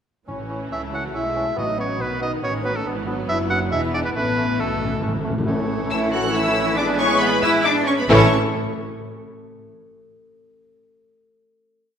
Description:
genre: quick classical-period movement for symphony orchestra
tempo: 138 BPM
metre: 3/4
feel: straight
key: A major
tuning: A4 = 440 Hz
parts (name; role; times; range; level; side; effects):
- rich studio violin section; melody; 0.3-8.3 s; C#4 to F#6; -26 LUFS; left 2 dB; none
- rich studio violin section; second line; 0.3-8.3 s; A3 to A4; -30 LUFS; left 3 dB; none
- warm clarinet; second line; 0.3-8.3 s; C#4 to A4; -31 LUFS; left 1 dB; none
- rich studio viola section; accompaniment; 0.3-8.3 s; D#3 to C#4; -28 LUFS; right 1 dB; none
- warm bassoon; accompaniment; 0.3-8.3 s; E3 to C#4; -31 LUFS; right 2 dB; none
- rich studio cello section; bass; 0.3-8.3 s; E2 to F#4; -27 LUFS; right 2 dB; none
- rich studio double bass section; bass; 0.3-8.3 s; E1 to C#2; -29 LUFS; right 3 dB; none
- timpani; percussion; 0.3-6.1, 8.1-8.3 s; A2; -29 LUFS; left 1 dB; none
- bright oboe; second line; 0.7-8.3 s; A4 to F#5; -27 LUFS; right 2 dB; none
- large flute ensemble; second line; 0.7-8.3 s; A4 to F#5; -28 LUFS; equal; none
- mellow French horn section; sustained chords; 0.7-8.3 s; G#3 to F#4; -28 LUFS; left 4 dB; none
room: wet concert hall reverb, RT60 1.9 s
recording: none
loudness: -18 LUFS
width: side -8 dB against mid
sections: 0.3-5.5 A section; 5.5-8.1 coda; 8.1-9.4 final chord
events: timpani fill 4.2-5.5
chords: 0.3 A; 1.6 B7/A; 2.9 E7/G#; 3.7 E7; 4.2 A; 6.8 E7/A; 8.1 A

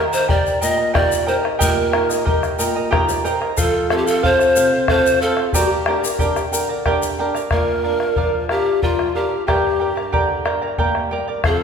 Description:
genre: andean folk, Andean ensemble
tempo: 61 BPM (dotted quarters)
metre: 6/8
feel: straight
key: G minor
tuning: A4 = 440 Hz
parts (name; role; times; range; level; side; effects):
- breathy pan flute; melody; 0.0-11.6 s; F4 to Eb5; -19 LUFS; left 1 dB; none
- charango; accompaniment; 0.0-11.6 s; G4 to Bb5; -21 LUFS; right 3 dB; none
- flamenco guitar; accompaniment; 0.0-11.6 s; F2 to Eb5; -25 LUFS; equal; none
- bombo; percussion; 0.1-11.6 s; none; -22 LUFS; left 2 dB; none
- egg shaker; percussion; 0.1-7.4 s; none; -28 LUFS; left 6 dB; none
room: wet recital hall reverb, RT60 1.5 s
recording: recorded in a church or concert hall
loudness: -16 LUFS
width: side -6 dB against mid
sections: 0.0-7.5 A section; 7.5-11.6 B section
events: nylon-string guitar fill 2.6-3.6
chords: 0.0 Eb; 3.6 F; 5.5 Gm; 7.5 Bb; 9.5 Gm

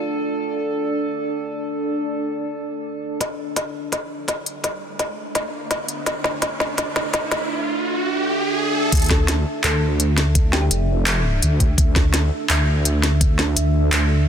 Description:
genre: half-time drum and bass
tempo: 168 BPM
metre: 4/4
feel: half-time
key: unclear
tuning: A4 = 440 Hz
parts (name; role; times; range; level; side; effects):
- deep dark ambient pad; sustained chords; 0.0-14.3 s; D4 to E5; -26 LUFS; right 1 dB; chorus, built-in reverb, sidechain pumping
- metallic inharmonic drone; texture; 0.0-3.2 s; A4; -31 LUFS; right 4 dB; chorus, built-in reverb
- electronic kick drum; drums; 3.2-13.3 s; none; -18 LUFS; equal; high-pass filter on kick
- organic electronic drum kit; drums; 3.2-14.0 s; handclaps, hi-hat, snare drum; -22 LUFS; equal; none
- riser; sound effects; 5.2-8.9 s; none; -26 LUFS; right 1 dB; none
- deep soft wobble bass; bass; 8.9-14.3 s; F1 to D2; -19 LUFS; equal; chorus
- thumb-piano-like synth pluck; melody; 9.1-10.7 s; G4 to A4; -31 LUFS; left 2 dB; chorus, tape echo
room: light reverb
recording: dense, heavily limited modern master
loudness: -18 LUFS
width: side -8 dB against mid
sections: 0.0-3.2 A section; 3.2-8.9 B section; 8.9-14.3 C section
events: build-up 3.2-8.9; drum fill 3.2-7.5; filter sweep on ambient pad 3.2-8.9; riser 5.2-8.9; drop 8.9-14.3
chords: 0.0 D5

